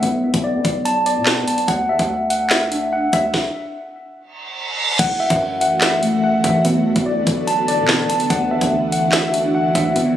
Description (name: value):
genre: hip hop, drill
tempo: 145 BPM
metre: 4/4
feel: half-time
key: unclear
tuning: A4 = 442 Hz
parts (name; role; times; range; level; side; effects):
- mellow tine electric piano; arpeggios; 0.0-10.2 s; A3 to A5; -18 LUFS; equal; medium stereo tremolo, digital delay
- distorted 808-style bass; bass; 0.0-10.2 s; F#1 to B2; -26 LUFS; equal; distortion
- drill drum kit; drums; 0.0-10.1 s; crash cymbal, handclaps, hi-hat, kick drum, snare drum; -20 LUFS; equal; none
- reverse cymbal; sound effects; 4.4-5.0 s; none; -21 LUFS; right 4 dB; none
- ethereal airy pad; sustained chords; 5.4-10.2 s; D3 to A4; -22 LUFS; right 1 dB; ensemble chorus, built-in reverb, phaser
room: light reverb, digital ambience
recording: recorded on a phone in the room, studio ambience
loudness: -15 LUFS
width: side -11 dB against mid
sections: 0.0-5.0 A section; 5.0-10.2 B section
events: stop 3.3-5.0; reverse cymbal 4.4-5.0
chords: 0.0 Bm7; 1.7 Dadd9; 3.3 N.C.; 5.0 F#m7; 6.6 Bm7; 8.3 Dadd9